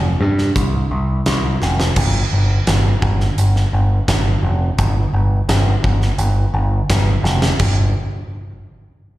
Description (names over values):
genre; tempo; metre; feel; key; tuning
classic rock; 85 BPM; 4/4; straight; unclear; A4 = 441 Hz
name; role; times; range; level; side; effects
growling picked electric bass; bass; 0.0-7.9 s; F1 to G2; -15 LUFS; equal; overdrive
huge arena drum kit; drums; 0.4-7.8 s; crash cymbal, hi-hat, kick drum, snare drum; -20 LUFS; equal; none
room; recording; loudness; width
little or no reverb; live gig heard through the venue's PA, recital hall reverb; -14 LUFS; side -16 dB against mid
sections
0.0-2.0 A section; 2.0-7.6 B section; 7.6-9.2 C section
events
drum fill 1.6-2.0, 7.3-7.6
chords
none